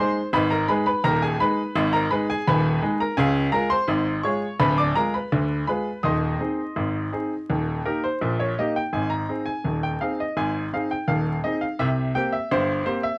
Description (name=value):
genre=ragtime piano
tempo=84 BPM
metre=2/4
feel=straight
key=Ab major from 3.2 s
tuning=A4 = 440 Hz
part: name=bright baby grand piano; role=solo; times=0.0-13.2 s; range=D1 to Eb6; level=-21 LUFS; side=equal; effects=cassette tape
room=moderate booth ambience, RT60 0.2 s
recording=home recording on cassette, vinyl crackle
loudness=-21 LUFS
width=side -29 dB against mid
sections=0.0-8.9 A section; 8.9-13.2 B section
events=none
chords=0.3 Abm; 3.2 Db; 4.6 Ddim7; 6.0 Ab/Eb; 7.5 Eb; 8.9 Ab; 11.8 C5